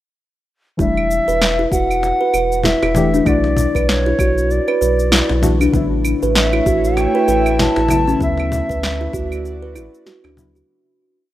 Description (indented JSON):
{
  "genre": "organic downtempo",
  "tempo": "97 BPM",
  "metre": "4/4",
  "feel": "swing 58% on 16ths",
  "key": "E dorian",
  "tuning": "A4 = 440 Hz",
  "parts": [
    { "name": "bansuri", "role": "melody", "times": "0.8-9.4 s", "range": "C#5 to A5", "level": "-20 LUFS", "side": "left 1 dB", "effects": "tape echo" },
    { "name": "deep mellow chord stab", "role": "accompaniment", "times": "0.8-10.7 s", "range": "C#3 to G4", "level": "-22 LUFS", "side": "left 2 dB", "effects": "chorus, sidechain pumping, tape echo" },
    { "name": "kalimba", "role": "arpeggios", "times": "0.8-10.7 s", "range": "C#4 to B4", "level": "-19 LUFS", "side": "right 2 dB", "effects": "tape echo" },
    { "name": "warm sub bass", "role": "bass", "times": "0.8-10.6 s", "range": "E1 to D2", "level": "-21 LUFS", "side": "equal", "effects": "none" },
    { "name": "electronic cabasa, claves and snare drum", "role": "drums", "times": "0.8-10.7 s", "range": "none", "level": "-20 LUFS", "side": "equal", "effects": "none" },
    { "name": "electronic kick drum", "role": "drums", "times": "0.8-9.3 s", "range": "none", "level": "-22 LUFS", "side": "equal", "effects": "none" },
    { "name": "cajon", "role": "percussion", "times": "2.0-10.5 s", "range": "none", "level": "-24 LUFS", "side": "left 2 dB", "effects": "none" },
    { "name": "airy breathy pad", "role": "sustained chords", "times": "5.7-10.7 s", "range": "A3 to E5", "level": "-24 LUFS", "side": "equal", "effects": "chorus, sidechain pumping" }
  ],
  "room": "light reverb",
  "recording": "rough home demo mix",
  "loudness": "-14 LUFS",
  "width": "side -14 dB against mid",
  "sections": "0.8-10.7 groove",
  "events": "fade-out 7.4-10.7",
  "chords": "0.8 Emadd9; 3.3 Bmadd9; 5.7 A7; 8.2 Dadd9"
}